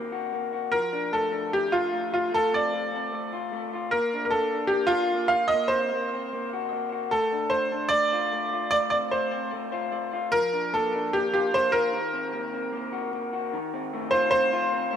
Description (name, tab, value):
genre	indie pop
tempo	150 BPM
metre	4/4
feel	straight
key	Bb major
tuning	A4 = 444 Hz
part	electric guitar through a small old amp	arpeggios	0.0-15.0 s	Eb3 to Gb4	-31 LUFS	left 3 dB	ping-pong delay
part	bright upright piano	melody	0.7-15.0 s	F4 to F5	-24 LUFS	right 1 dB	ping-pong delay
room	wet lush hall reverb, RT60 2.6 s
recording	rough home demo mix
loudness	-24 LUFS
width	side -8 dB against mid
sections	0.0-13.5 A section; 13.5-15.0 B section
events	none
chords	0.0 Ebm6; 0.7 Bbmaj7; 2.3 Dm7; 3.9 Bbmaj7; 5.5 Ebm6/Bb (rootless); 7.1 Amadd11; 10.3 Bbmaj13/F; 11.9 Ebm6; 13.5 F7